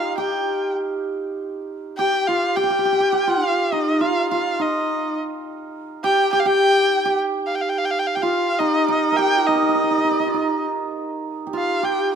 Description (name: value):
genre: chinese traditional, Chinese chamber ensemble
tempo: 103 BPM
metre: 4/4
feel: rubato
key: G jue mode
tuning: A4 = 440 Hz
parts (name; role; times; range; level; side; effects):
- warm erhu; melody; 0.0-12.1 s; Eb5 to G5; -21 LUFS; equal; none
- hammered dulcimer; second line; 0.0-12.2 s; Eb4 to Bb4; -23 LUFS; right 6 dB; none
- xiao; second line; 0.0-12.2 s; Eb4 to G4; -24 LUFS; left 7 dB; none
room: light reverb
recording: close, detailed microphones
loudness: -18 LUFS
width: side -7 dB against mid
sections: 0.0-1.7 A section; 1.7-12.2 B section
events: none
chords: none